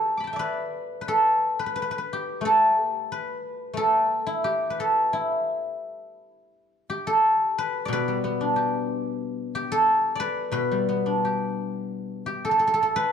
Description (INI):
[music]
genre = chinese traditional, Chinese solo plucked strings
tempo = 89 BPM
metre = 2/4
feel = rubato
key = unclear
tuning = A4 = 440 Hz
[part]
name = guzheng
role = solo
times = 0.0-13.1 s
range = B2 to D6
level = -22 LUFS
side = equal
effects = none
[sound]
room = moderate recital hall reverb, RT60 1.6 s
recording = dark, warm production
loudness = -22 LUFS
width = side -7 dB against mid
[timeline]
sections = 0.0-6.5 A section; 6.5-13.1 B section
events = none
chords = none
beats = 0.39 | 1.08 1.76 | 2.42 3.08 | 3.75 4.42 | 5.10 5.80 | 6.51 7.21 | 7.90 8.56 | 9.22 9.88 | 10.54 11.22 | 11.91 12.60